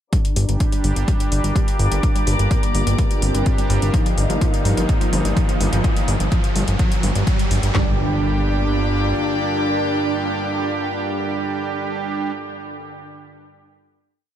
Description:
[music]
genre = melodic techno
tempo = 126 BPM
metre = 4/4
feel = straight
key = G minor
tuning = A4 = 444 Hz
[part]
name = analog synth brass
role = melody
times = 0.1-12.3 s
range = Bb3 to Eb4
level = -27 LUFS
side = right 1 dB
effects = chorus, sidechain pumping, tape echo
[part]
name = rich chamber string section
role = sustained chords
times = 0.1-12.3 s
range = Bb3 to D6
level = -29 LUFS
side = left 3 dB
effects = sidechain pumping, low-pass filter
[part]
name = wide unison pluck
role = arpeggios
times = 0.1-8.0 s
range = F3 to G3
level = -30 LUFS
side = equal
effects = none
[part]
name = overtone-sweeping drone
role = drone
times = 0.9-12.4 s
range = G2 to D3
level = -32 LUFS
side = equal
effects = chorus, built-in reverb, sidechain pumping
[part]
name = electronic hi-hat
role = drums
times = 0.1-7.7 s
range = none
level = -30 LUFS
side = left 2 dB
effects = sidechain pumping on hats, high-pass filter on hats, high-pass filter on room
[part]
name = techno drum kit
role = drums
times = 0.1-7.9 s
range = handclaps, kick drum, snare drum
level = -19 LUFS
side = equal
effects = none
[part]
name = riser and impact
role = sound effects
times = 3.1-12.4 s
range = none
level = -28 LUFS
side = right 1 dB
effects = none
[part]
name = deep dark ambient pad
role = texture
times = 1.3-12.3 s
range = F4 to F5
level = -31 LUFS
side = left 1 dB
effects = chorus, built-in reverb, sidechain pumping
[part]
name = fat analog bass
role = bass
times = 0.4-9.1 s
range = G1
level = -19 LUFS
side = equal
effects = sidechain pumping
[part]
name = brassy analog pad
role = stabs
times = 0.5-12.3 s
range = Eb3 to G4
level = -28 LUFS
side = right 4 dB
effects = chorus, sidechain pumping, analog delay
[sound]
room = light reverb, digital ambience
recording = none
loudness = -17 LUFS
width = side -10 dB against mid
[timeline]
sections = 0.1-7.7 build; 7.7-11.6 final chord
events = build-up 0.1-7.7; filter sweep on synth pluck 0.1-5.8; filter sweep on analog polysynth 0.1-5.8; filter sweep on string section 0.1-5.8; riser 3.1-7.7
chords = 0.1 Gm; 3.9 Ebadd9/G; 7.7 Gm

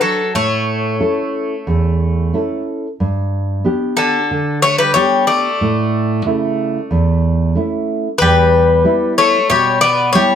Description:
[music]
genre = greek folk, Greek bouzouki band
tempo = 92 BPM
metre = 4/4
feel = straight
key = unclear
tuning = A4 = 440 Hz
[part]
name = Greek bouzouki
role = melody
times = 0.0-10.4 s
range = A4 to D5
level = -15 LUFS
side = left 5 dB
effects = plate reverb
[part]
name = Greek bouzouki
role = second line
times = 0.0-10.4 s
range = D3 to B3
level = -19 LUFS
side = left 1 dB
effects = none
[part]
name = nylon-string guitar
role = accompaniment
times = 0.0-10.4 s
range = E2 to A4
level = -17 LUFS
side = right 2 dB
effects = none
[sound]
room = moderate small room reverb, RT60 0.5 s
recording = none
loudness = -13 LUFS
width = side -8 dB against mid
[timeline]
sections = 0.0-8.2 A section; 8.2-10.4 B section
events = speeding up 0.0-10.4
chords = 0.3 A; 3.0 G; 5.6 A; 8.2 Em

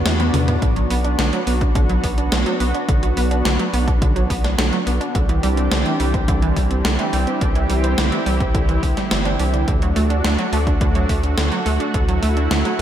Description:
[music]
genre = synthwave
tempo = 106 BPM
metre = 4/4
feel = straight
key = unclear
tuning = A4 = 436 Hz
[part]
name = lush unison pad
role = sustained chords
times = 0.0-12.8 s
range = E3 to G4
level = -23 LUFS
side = equal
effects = chorus, sidechain pumping
[part]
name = analog pluck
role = arpeggios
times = 0.0-12.8 s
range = D3 to D4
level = -24 LUFS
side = right 2 dB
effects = chorus, cassette tape, digital delay, slapback echo
[part]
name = round analog bass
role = bass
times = 0.0-12.8 s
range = G1 to E2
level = -20 LUFS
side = equal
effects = sidechain pumping
[part]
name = swell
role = sound effects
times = 0.0-0.6 s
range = none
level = -30 LUFS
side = left 3 dB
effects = none
[part]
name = gated 80s digital drum machine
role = drums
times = 0.1-12.8 s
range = hi-hat, snare drum, toms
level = -24 LUFS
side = right 1 dB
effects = gated reverb, gated reverb snare
[part]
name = electronic kick drum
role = drums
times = 0.6-12.1 s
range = none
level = -20 LUFS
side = equal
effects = none
[sound]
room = moderate lush hall reverb, RT60 2.5 s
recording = big arena sound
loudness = -16 LUFS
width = side -10 dB against mid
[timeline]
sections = 0.0-12.8 A section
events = drum fill 0.2-0.6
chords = 0.0 Em7; 0.6 Bm; 5.2 Cadd9; 9.7 D

